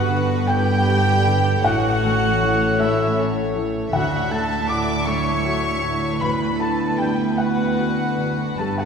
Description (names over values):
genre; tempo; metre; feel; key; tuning
cinematic; 52 BPM (dotted quarters); 6/8; rubato; unclear; A4 = 441 Hz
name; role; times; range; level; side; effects
warm chamber violin section; melody; 0.0-8.9 s; B4 to E5; -30 LUFS; left 2 dB; none
clear studio violin section; second line; 0.0-8.9 s; E5 to D6; -28 LUFS; left 2 dB; none
mellow oboe; second line; 0.0-8.9 s; E5 to D6; -28 LUFS; equal; none
felt-muted upright piano; accompaniment; 0.0-8.9 s; D2 to D6; -25 LUFS; left 1 dB; none
warm studio viola section; accompaniment; 0.0-8.9 s; G3 to D5; -28 LUFS; right 2 dB; none
dark French horn section; sustained chords; 0.0-8.9 s; A3 to A4; -27 LUFS; left 4 dB; none
concert harp; arpeggios; 0.0-8.9 s; G2 to E5; -32 LUFS; left 4 dB; none
dark studio double bass section; bass; 0.0-8.9 s; G1 to D2; -25 LUFS; right 4 dB; none
warm studio cello section; bass; 0.0-8.9 s; D2 to A2; -26 LUFS; right 2 dB; none
room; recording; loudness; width
wet scoring stage reverb, RT60 2.0 s; minimal, uncompressed stereo recording; -18 LUFS; side -6 dB against mid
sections
0.0-8.9 A section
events
none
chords
0.0 Gadd9; 1.6 A; 3.9 Dadd9; 6.2 Bm/D